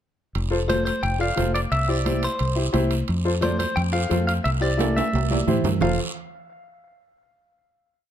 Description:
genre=latin, cumbia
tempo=175 BPM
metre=4/4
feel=straight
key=F major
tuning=A4 = 440 Hz
part: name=fingered electric bass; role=bass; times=0.4-6.0 s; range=F1 to A2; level=-24 LUFS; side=equal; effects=none
part: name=guiro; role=percussion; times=0.4-5.9 s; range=none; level=-36 LUFS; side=right 4 dB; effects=none
part: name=timbales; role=percussion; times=0.4-5.9 s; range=none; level=-32 LUFS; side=right 8 dB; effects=none
part: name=warm upright piano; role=accompaniment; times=0.5-6.0 s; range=E4 to D5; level=-26 LUFS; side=left 2 dB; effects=none
part: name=clean electric guitar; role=melody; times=0.7-6.0 s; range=C5 to G5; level=-27 LUFS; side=left 1 dB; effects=spring reverb, tape echo
part: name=congas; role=percussion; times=0.7-5.9 s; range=none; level=-29 LUFS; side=right 2 dB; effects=none
room=little or no reverb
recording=close, detailed microphones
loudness=-20 LUFS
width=side -10 dB against mid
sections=0.3-5.8 A section; 5.8-7.2 final chord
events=drum fill 4.8-5.8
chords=0.3 F; 1.7 C; 3.1 F; 4.5 C; 5.8 F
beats=| 0.35 0.69 1.03 1.37 | 1.72 2.06 2.40 2.74 | 3.09 3.43 3.77 4.11 | 4.46 4.80 5.14 5.48 | 5.82

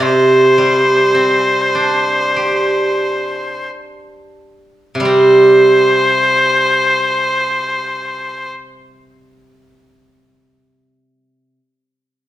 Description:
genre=chinese traditional, Chinese chamber ensemble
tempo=42-54 BPM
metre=4/4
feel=straight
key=unclear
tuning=A4 = 440 Hz
part: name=rich erhu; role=melody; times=0.0-8.5 s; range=C5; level=-14 LUFS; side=left 1 dB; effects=none
part: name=steel-string zither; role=accompaniment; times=0.0-11.6 s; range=C3 to G4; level=-12 LUFS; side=right 2 dB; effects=none
room=wet recital hall reverb, RT60 1.4 s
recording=none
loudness=-10 LUFS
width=side -13 dB against mid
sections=0.0-5.1 A section; 5.1-10.8 B section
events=slowing down 0.0-5.1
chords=none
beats=| 0.00 1.14 2.35 3.66 | 5.06 6.49 7.91 9.33

